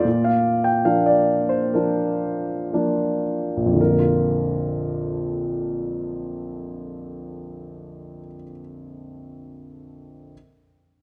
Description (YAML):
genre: classical, lyrical solo piano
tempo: 57-75 BPM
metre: 4/4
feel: rubato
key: Bb major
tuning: A4 = 441 Hz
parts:
  - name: warm concert grand piano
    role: solo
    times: 0.0-10.3 s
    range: Bb1 to G5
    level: -24 LUFS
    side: equal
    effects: none
room: moderate concert hall reverb, RT60 2.1 s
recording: none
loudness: -22 LUFS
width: mono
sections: 0.0-3.8 A section; 3.8-7.8 B section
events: slowing down 0.0-3.8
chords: 0.1 Bb